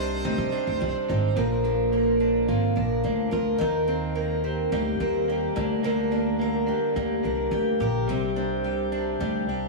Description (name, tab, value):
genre	pop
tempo	107 BPM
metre	4/4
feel	straight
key	C minor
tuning	A4 = 441 Hz
part	clear harmonica	melody	0.0-1.1 s	C5	-41 LUFS	equal	dub echo
part	fingerpicked twelve-string acoustic guitar	accompaniment	0.0-9.7 s	Bb2 to Bb4	-25 LUFS	left 1 dB	dub echo
part	direct-recorded clean electric guitar	arpeggios	0.0-9.7 s	F3 to G4	-31 LUFS	right 8 dB	spring reverb
part	upright bass	bass	0.0-9.7 s	Ab1 to Eb2	-29 LUFS	equal	none
room	moderate plate reverb, RT60 2.6 s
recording	echo-heavy mix, studio ambience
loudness	-22 LUFS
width	side +0 dB against mid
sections	0.0-1.4 A section; 1.4-9.7 B section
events	none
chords	0.0 Cmadd9; 1.4 Bb; 3.6 Eb6; 5.6 Gm/D; 8.1 Csus2